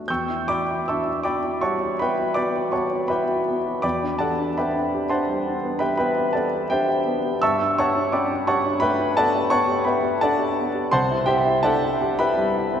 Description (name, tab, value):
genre	classical, impressionist solo piano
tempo	75-87 BPM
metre	5/4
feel	rubato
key	E minor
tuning	A4 = 439 Hz
part	clear grand piano	solo	0.0-12.8 s	C2 to G6	-20 LUFS	equal	none
room	wet church reverb, RT60 3.9 s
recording	none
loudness	-20 LUFS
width	side -8 dB against mid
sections	0.1-12.8 A section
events	none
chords	0.1 Emadd9; 3.8 Cmaj9/E; 7.4 G69; 10.9 Cmaj7